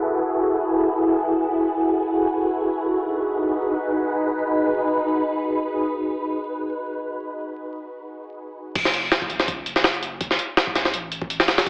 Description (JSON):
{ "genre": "drum and bass, jungle", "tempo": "free time", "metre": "none", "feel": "none", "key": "F# dorian", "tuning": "A4 = 439 Hz", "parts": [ { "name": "soft string machine", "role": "sustained chords", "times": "0.0-8.7 s", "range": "D#4 to B4", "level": "-21 LUFS", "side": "equal", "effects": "phaser, ensemble chorus, vintage 12-bit sampler grit" }, { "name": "soft dub sub bass", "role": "bass", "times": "8.8-11.7 s", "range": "F#1 to C#2", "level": "-40 LUFS", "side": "equal", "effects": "tube saturation" }, { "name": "jungle sampler-style drum kit", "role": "drums", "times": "8.8-11.7 s", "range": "crash cymbal, hi-hat, kick drum, snare drum", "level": "-19 LUFS", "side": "equal", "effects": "none" } ], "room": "wet lush hall reverb, RT60 2.2 s", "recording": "vinyl crackle, low-pass filter, AM radio sound", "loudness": "-20 LUFS", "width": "side -26 dB against mid", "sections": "0.0-8.8 A section; 8.8-11.7 B section", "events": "filter sweep on string machine 0.0-8.8; filter sweep 0.0-8.8; drop 8.8-11.7", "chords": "0.0 F#m11; 2.9 G#m7; 8.8 F#m" }